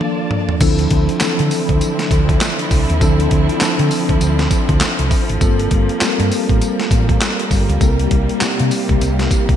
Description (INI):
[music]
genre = R&B, new jack swing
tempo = 100 BPM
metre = 4/4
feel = swing 61% on 16ths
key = D minor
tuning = A4 = 440 Hz
[part]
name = mellow tine electric piano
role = accompaniment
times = 0.0-9.6 s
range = E3 to Bb4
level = -19 LUFS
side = left 1 dB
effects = medium stereo tremolo
[part]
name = warm symphonic string section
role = sustained chords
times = 0.0-9.6 s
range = C3 to A5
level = -24 LUFS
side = right 1 dB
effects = none
[part]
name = boom bap sampler-style drum kit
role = drums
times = 0.0-9.6 s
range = crash cymbal, handclaps, hi-hat, kick drum, snare drum, tambourine, toms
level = -17 LUFS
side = equal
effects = vintage 12-bit sampler grit, gated reverb
[part]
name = hollow-body short-scale fingered electric bass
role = bass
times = 0.6-9.6 s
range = G1 to D3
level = -18 LUFS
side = equal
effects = none
[sound]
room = light reverb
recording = bright 1980s-style digital production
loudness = -13 LUFS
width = side -10 dB against mid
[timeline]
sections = 0.6-9.6 A section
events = band accent 0.0-0.6; drum fill 0.0-0.6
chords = 0.0 Bbmaj7; 0.6 Dm9; 5.4 Gm11; 7.8 C7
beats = 0.01 | 0.61 1.21 1.81 2.41 | 3.01 3.61 4.21 4.81 | 5.41 6.01 6.61 7.21 | 7.81 8.41 9.01